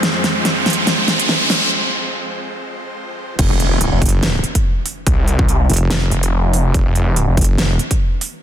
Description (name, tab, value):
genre	heavy wobble dubstep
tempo	143 BPM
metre	4/4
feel	swing 55% on 16ths, half-time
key	F phrygian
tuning	A4 = 441 Hz
part	supersaw chords	sustained chords	0.0-3.3 s	F2 to C5	-23 LUFS	equal	sidechain pumping
part	big-room dance drum kit	drums	0.0-8.3 s	crash cymbal, hi-hat, snare drum	-20 LUFS	right 1 dB	none
part	riser and impact	sound effects	0.0-5.1 s	none	-19 LUFS	right 1 dB	none
part	wobble bass	bass	3.4-7.8 s	F1 to Gb1	-17 LUFS	equal	chorus, overdrive
part	electronic kick drum	drums	3.4-8.0 s	none	-16 LUFS	equal	none
part	snarling distorted saw bass	bass	3.5-7.4 s	F1 to C2	-15 LUFS	equal	distortion, overdrive
room	light reverb, digital ambience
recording	dense, heavily limited modern master, high-pass filter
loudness	-14 LUFS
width	side -10 dB against mid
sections	0.0-3.4 A section; 3.4-8.4 B section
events	build-up 0.0-3.4; drum fill 0.0-1.7; riser 0.0-1.7; break 1.7-3.4; drop 3.4-8.4; impact 3.4-5.1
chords	0.0 Fm; 3.4 F5